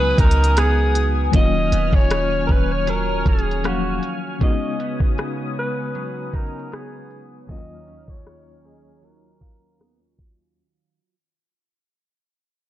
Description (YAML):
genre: contemporary R&B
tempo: 78 BPM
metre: 4/4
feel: swing 54% on 16ths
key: Eb minor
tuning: A4 = 441 Hz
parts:
  - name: breathy alto saxophone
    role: melody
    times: 0.0-10.2 s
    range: Gb4 to Eb5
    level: -24 LUFS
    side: equal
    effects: ping-pong delay
  - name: FM electric piano with tremolo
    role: accompaniment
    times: 0.0-10.6 s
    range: Eb2 to F5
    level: -28 LUFS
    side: left 8 dB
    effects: none
  - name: lush unison pad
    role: sustained chords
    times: 0.0-10.5 s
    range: Cb4 to F6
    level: -30 LUFS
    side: left 3 dB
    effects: chorus, phaser
  - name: direct-recorded clean electric guitar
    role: arpeggios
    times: 0.0-11.1 s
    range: Db3 to F4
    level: -29 LUFS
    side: right 7 dB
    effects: analog chorus, ping-pong delay
  - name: clean 808-style bass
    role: bass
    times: 0.0-4.0 s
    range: Eb1 to Db2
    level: -20 LUFS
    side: equal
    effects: none
  - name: smooth R&B drum kit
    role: drums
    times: 0.2-10.4 s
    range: hi-hat, kick drum, rim click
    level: -19 LUFS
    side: equal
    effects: vintage 12-bit sampler grit
room: little or no reverb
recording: low-pass filter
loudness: -17 LUFS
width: side -13 dB against mid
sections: 0.0-10.6 A section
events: fade-out 0.0-10.6; filter sweep 0.0-10.6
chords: 0.0 Db9sus4; 1.3 Ebm9; 4.4 Db9sus4; 7.5 Ebm9